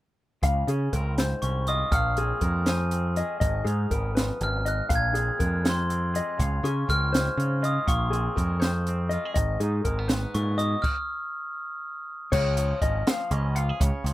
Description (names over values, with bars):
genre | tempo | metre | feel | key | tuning
math rock and midwest emo | 81 BPM (dotted quarters) | 6/8 | straight | Db major | A4 = 439 Hz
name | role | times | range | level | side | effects
twangy electric guitar | accompaniment | 0.4-14.1 s | F2 to Ab4 | -37 LUFS | right 5 dB | none
mellow electric guitar | arpeggios | 0.4-14.1 s | Ab4 to F5 | -31 LUFS | left 4 dB | none
growling picked electric bass | bass | 0.4-14.1 s | Ab1 to Db3 | -26 LUFS | equal | overdrive
compact cocktail drum kit | drums | 0.4-14.1 s | crash cymbal, hi-hat, kick drum, snare drum | -27 LUFS | equal | none
glockenspiel with hard plastic mallets | melody | 1.4-11.8 s | Ab5 to Ab6 | -30 LUFS | equal | none
room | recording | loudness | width
little or no reverb | rough home demo mix | -23 LUFS | side -15 dB against mid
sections
0.4-12.3 A section; 12.3-14.1 B section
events
stop 10.8-12.3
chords
0.4 Dbmaj7; 1.9 Bbsus2; 3.4 Abm7; 4.9 Bbsus2; 6.4 Dbmaj7; 7.9 Bbm9; 9.4 Abm; 10.8 N.C.; 12.3 Db